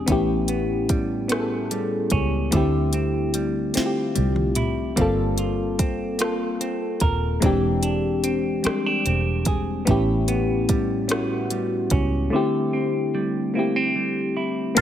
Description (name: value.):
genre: slow six-eight R&B.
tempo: 49 BPM (dotted quarters).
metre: 6/8.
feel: straight.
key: unclear.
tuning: A4 = 440 Hz.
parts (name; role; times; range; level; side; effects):
semi-hollow electric guitar; second line; 0.0-14.8 s; A2 to Bb4; -27 LUFS; right 5 dB; none.
mellow FM electric piano; accompaniment; 0.0-14.8 s; G3 to A4; -24 LUFS; left 3 dB; chorus.
vintage muted fingered electric bass; bass; 0.0-14.8 s; Eb1 to D2; -26 LUFS; right 1 dB; none.
smooth R&B drum kit; drums; 0.1-14.8 s; crash cymbal, hi-hat, kick drum, rim click, snare drum, toms; -25 LUFS; equal; none.
tonewheel organ; sustained chords; 14.8 s; Bb4 to C6; -16 LUFS; equal; chorus vibrato, slow rotary speaker.
room: light reverb.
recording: none.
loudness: -20 LUFS.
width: side -10 dB against mid.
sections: 0.0-14.8 A section.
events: drum fill 3.8-5.0; drums muted 12.3-14.8.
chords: 0.1 A9; 2.5 D9sus4; 5.0 Gm11; 7.4 E7alt; 9.9 A9; 12.3 D9sus4.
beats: | 0.08 1.30 | 2.53 3.75 | 4.98 6.20 | 7.42 8.65 | 9.87 11.10 | 12.32 13.55 | 14.77.